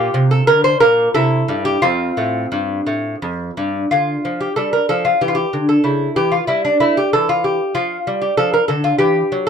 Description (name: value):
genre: classical, baroque-style dance for lute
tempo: 85-97 BPM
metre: 3/4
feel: rubato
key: F major, D minor from 3.9 s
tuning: A4 = 440 Hz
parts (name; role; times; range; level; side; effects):
- lute; solo; 0.0-9.5 s; F2 to C5; -14 LUFS; equal; none
room: light reverb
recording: dry, close 1970s-style studio recording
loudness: -14 LUFS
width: side -7 dB against mid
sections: 0.0-3.9 A section; 3.9-9.5 A section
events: none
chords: 0.0 Bbmaj13; 1.1 C; 1.8 F; 3.9 Dm; 5.2 Dsus24; 5.8 A7(no3); 7.7 Dm/F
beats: 0.47 1.14 | 1.82 2.52 3.22 | 3.91 4.57 5.21 | 5.85 6.48 7.12 | 7.75 8.37 9.00